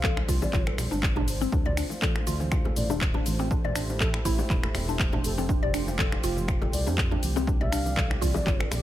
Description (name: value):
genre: afro house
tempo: 121 BPM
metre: 4/4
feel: swing 55% on 16ths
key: D minor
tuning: A4 = 440 Hz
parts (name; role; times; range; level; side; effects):
- bass bansuri; melody; 0.0-8.7 s; A4 to F5; -37 LUFS; left 1 dB; ping-pong delay
- dark analog pad; sustained chords; 0.0-8.8 s; G3 to D5; -37 LUFS; right 2 dB; chorus, sidechain pumping
- mallet-like synth pluck; arpeggios; 0.0-8.7 s; C4 to D5; -33 LUFS; left 1 dB; chorus, phaser, sidechain pumping, ping-pong delay
- smooth synth bass; bass; 0.0-8.8 s; D1 to F2; -30 LUFS; equal; sidechain pumping
- electronic kick drum; drums; 0.0-8.6 s; none; -27 LUFS; equal; none
- house drum kit; drums; 0.0-8.8 s; finger snaps, handclaps, hi-hat, shaker; -32 LUFS; left 1 dB; none
- congas; percussion; 0.0-8.8 s; none; -36 LUFS; right 3 dB; none
- bongos; percussion; 0.2-8.8 s; none; -38 LUFS; left 5 dB; none
room: digital ambience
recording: none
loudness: -24 LUFS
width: side -13 dB against mid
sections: 0.0-8.8 A section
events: none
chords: 0.0 Csus2; 1.5 Dm7; 3.5 Am7; 5.5 Fadd9; 7.5 Csus2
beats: 0.04 0.53 1.03 | 1.52 2.02 2.52 3.01 | 3.51 4.00 4.50 5.00 | 5.49 5.99 6.48 6.98 | 7.47 7.97 8.47